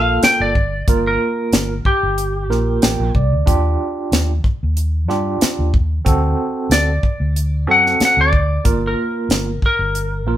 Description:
straight-eighth soul blues; 93 BPM; 4/4; swing 54% on 16ths; G minor; A4 = 440 Hz
clean lap steel guitar; melody; 0.0-10.4 s; G4 to G5; -18 LUFS; left 1 dB
overdriven tine electric piano; accompaniment; 0.0-10.4 s; Bb3 to G5; -21 LUFS; right 3 dB; medium tremolo
vintage muted fingered electric bass; bass; 0.0-10.4 s; G1 to G2; -19 LUFS; equal
tight funk drum kit; drums; 0.2-10.1 s; hi-hat, kick drum, snare drum; -17 LUFS; equal
light reverb; band playing live in one room; -14 LUFS; side -12 dB against mid
0.0-10.4 A section
tine electric piano fill 2.5-3.5
0.0 Gm7; 3.5 Ebmaj7; 6.1 D7; 8.6 Gm7

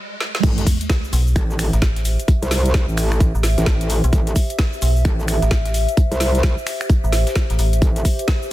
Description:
bass house; 130 BPM; 4/4; swing 62% on 16ths; A minor; A4 = 440 Hz
riser and sub drop; sound effects; 0.0-2.3 s; -27 LUFS; right 3 dB
garage drum kit; drums; 0.2-8.5 s; crash cymbal, finger snaps, hi-hat, shaker, snare drum; -26 LUFS; equal; high-pass filter on snare, high-pass filter on hats, high-pass filter on perc, high-pass filter on cymbals
metallic wobble bass; bass; 0.4-8.0 s; A1 to C2; -19 LUFS; equal; chorus, tube saturation, sidechain pumping
dusty soul sampler-style drum kit; drums; 0.4-8.4 s; hi-hat, snare drum, tambourine; -37 LUFS; right 1 dB
electronic kick drum; drums; 0.4-8.4 s; -17 LUFS; equal; high-pass filter on kick
warbly tape-like pad; texture; 1.3-8.5 s; G4 to A5; -27 LUFS; equal; chorus, built-in reverb, sidechain pumping
metallic FM bass; bass; 1.1-7.8 s; A1 to B1; -17 LUFS; equal; overdrive, sidechain pumping
little or no reverb; dense, heavily limited modern master, high-pass filter; -16 LUFS; side -15 dB against mid
0.4-8.5 A section
break 0.0-0.4; riser 0.0-0.4; drum fill 0.2; drop 0.4-8.5; impact 0.4-2.3
0.4 Am

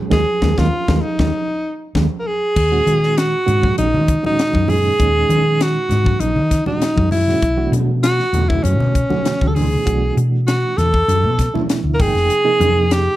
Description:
electric jazz fusion; 99 BPM; 4/4; straight; A4 = 441 Hz
reed electric piano; accompaniment; 0.0-13.1 s; Bb2 to G5; -23 LUFS; right 5 dB; fast tremolo
clear alto saxophone; melody; 0.1-13.2 s; C#4 to Bb4; -18 LUFS; right 1 dB; slapback echo
hollow-body short-scale fingered electric bass; bass; 0.1-13.1 s; F1 to Eb3; -18 LUFS; left 1 dB
crisp fusion drum kit; drums; 0.1-13.1 s; crash cymbal, hi-hat, kick drum, snare drum; -21 LUFS; left 1 dB
congas; percussion; 0.1-12.8 s; -25 LUFS; left 1 dB
small room ambience; dry, close 1970s-style studio recording; -14 LUFS; side -15 dB against mid
0.0-2.6 A section; 2.6-13.2 B section
band accent 0.1-2.6; drum fill 1.3-2.6
0.0 Ebsus4; 2.6 Ebm7; 7.4 Bm11; 12.0 Fm11

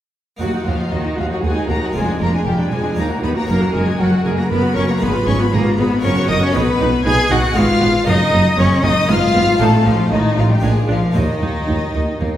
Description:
classical, baroque-style concerto movement with solo episodes; 118 BPM; 3/4; straight; Eb minor; A4 = 440 Hz
dark chamber violin section; melody; 0.4-12.4 s; Eb5 to Ab6; -25 LUFS; left 4 dB
rich cello; melody; 0.4-12.3 s; Eb3 to Ab4; -20 LUFS; left 1 dB
rich chamber violin section; second line; 0.4-12.4 s; Eb4 to Ab5; -23 LUFS; left 2 dB
harpsichord; accompaniment; 0.4-12.4 s; Eb2 to Bb4; -24 LUFS; equal
rich chamber viola section; accompaniment; 0.4-12.3 s; Bb3 to Bb4; -25 LUFS; right 2 dB
dark chamber cello section; bass; 0.4-12.3 s; Eb2 to B2; -21 LUFS; right 1 dB
rich studio double bass section; bass; 0.4-12.3 s; F1 to Eb2; -20 LUFS; right 1 dB
wet recital hall reverb, RT60 1.8 s; heard from further back in the room; -14 LUFS; side -12 dB against mid
0.4-12.4 A section
0.4 Ebm; 2.0 Ddim/F; 3.0 Ebm; 3.5 Gb; 5.0 Fdim/Ab; 6.0 Gb; 6.5 B; 7.6 Abm; 8.1 Ebm/Gb; 9.1 Fdim/Ab; 9.6 F7/A; 10.6 Bb7; 11.2 Ebm

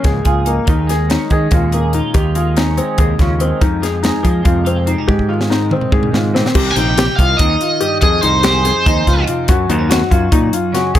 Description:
math rock and midwest emo; 286 BPM (eighths); 7/8; straight; A4 = 440 Hz
twelve-string electric guitar; accompaniment; 0.0-11.0 s; F2 to Ab4; -21 LUFS; right 6 dB; lush chorus
felt-muted upright piano; arpeggios; 0.0-11.0 s; Bb3 to Ab4; -19 LUFS; left 7 dB
growling fingered electric bass; bass; 0.0-11.0 s; Bb1 to F3; -17 LUFS; right 1 dB; overdrive
crisp fusion drum kit; drums; 0.0-11.0 s; crash cymbal, hi-hat, kick drum, snare drum, toms; -16 LUFS; equal
overdriven electric guitar; melody; 6.7-9.2 s; C5 to Ab5; -16 LUFS; right 2 dB
little or no reverb; -12 LUFS; side -12 dB against mid
0.0-6.6 A section; 6.6-11.0 B section
drum fill 5.1-6.6
0.0 Db69; 0.7 Eb9sus4; 3.6 Fm9; 5.1 Ab6; 6.6 Cm7; 8.0 Fm7; 9.5 Gb5

